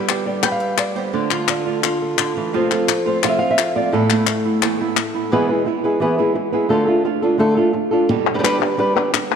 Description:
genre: flamenco.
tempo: 172 BPM.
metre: 4/4.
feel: straight.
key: unclear.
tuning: A4 = 440 Hz.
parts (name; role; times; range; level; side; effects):
flamenco guitar; melody; 0.0-9.2 s; A2 to G5; -18 LUFS; equal; none.
flamenco guitar; stabs; 0.0-9.4 s; E2 to G4; -24 LUFS; right 9 dB; none.
palmas hand claps; percussion; 0.1-5.1, 8.3-9.4 s; none; -22 LUFS; left 12 dB; none.
room: wet plate reverb, RT60 3.5 s.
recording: 1960s-style stereo with parts hard left and right.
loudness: -16 LUFS.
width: side -7 dB against mid.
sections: 0.0-5.3 A section; 5.3-9.4 B section.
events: none.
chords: 0.0 G; 1.1 Dm; 2.5 F; 3.9 Asus2; 5.3 E; 6.7 Dm; 8.1 G.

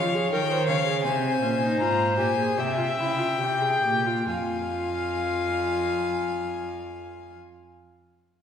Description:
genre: classical, baroque-style fugue for string quartet.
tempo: 67-86 BPM.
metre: 4/4.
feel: straight.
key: F minor.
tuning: A4 = 440 Hz.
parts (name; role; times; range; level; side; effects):
warm violin; melody; 0.0-7.4 s; F5 to Bb5; -29 LUFS; left 6 dB; none.
dark violin; second line; 0.0-7.4 s; C5 to G5; -28 LUFS; left 2 dB; none.
warm viola; accompaniment; 0.0-7.4 s; C4 to Db5; -29 LUFS; equal; none.
rich cello; bass; 0.0-7.4 s; F2 to F3; -30 LUFS; right 2 dB; none.
room: wet concert hall reverb, RT60 1.8 s.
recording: heard from further back in the room.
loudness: -23 LUFS.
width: side -8 dB against mid.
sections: 0.0-4.3 A section; 4.3-7.9 B section.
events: slowing down 0.0-4.3.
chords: 0.0 Db; 1.0 Fm; 2.6 C7; 4.3 Fm.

